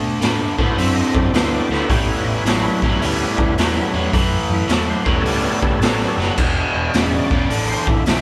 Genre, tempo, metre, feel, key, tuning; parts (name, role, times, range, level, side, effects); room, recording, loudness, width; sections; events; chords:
blues rock power trio and southern rock; 107 BPM; 4/4; swing 65% on 8ths; A mixolydian; A4 = 439 Hz
crunchy overdriven guitar; riff; 0.0-8.2 s; E2 to C4; -22 LUFS; equal
vintage muted fingered electric bass; bass; 0.0-8.2 s; E1 to B2; -26 LUFS; equal
raw garage drum kit; drums; 0.2-8.2 s; crash cymbal, hi-hat, kick drum, snare drum; -23 LUFS; equal
overdriven tonewheel organ; sustained chords; 0.6-8.2 s; F#3 to E5; -26 LUFS; equal; slow rotary speaker, chorus vibrato
moderate stone room reverb, RT60 0.9 s; band playing live in one room; -18 LUFS; mono
0.0-8.2 A section
tonewheel organ solo 0.0-8.2
0.0 D7; 1.9 A7; 6.4 E7